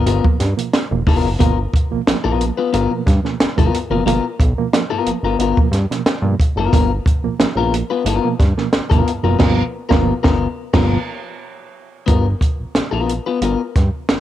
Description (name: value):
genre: funk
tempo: 90 BPM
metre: 4/4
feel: straight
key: unclear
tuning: A4 = 440 Hz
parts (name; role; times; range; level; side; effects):
- electric guitar at the edge of break-up; accompaniment; 0.0-13.6 s; B3 to B4; -20 LUFS; left 7 dB; spring reverb, cassette tape, plate reverb
- fat analog bass; bass; 0.0-14.2 s; E1 to G2; -19 LUFS; equal; none
- compact cocktail drum kit; drums; 0.1-14.2 s; crash cymbal, hi-hat, kick drum, snare drum; -17 LUFS; right 1 dB; cassette tape
- reed electric piano; stabs; 0.2-11.0 s; G2 to A#3; -23 LUFS; right 8 dB; fast tremolo, cassette tape, plate reverb
room: light reverb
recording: home recording on cassette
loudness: -15 LUFS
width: side -12 dB against mid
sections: 0.0-12.1 A section; 12.1-14.2 B section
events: band accent 9.4-12.1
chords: 0.0 G7#9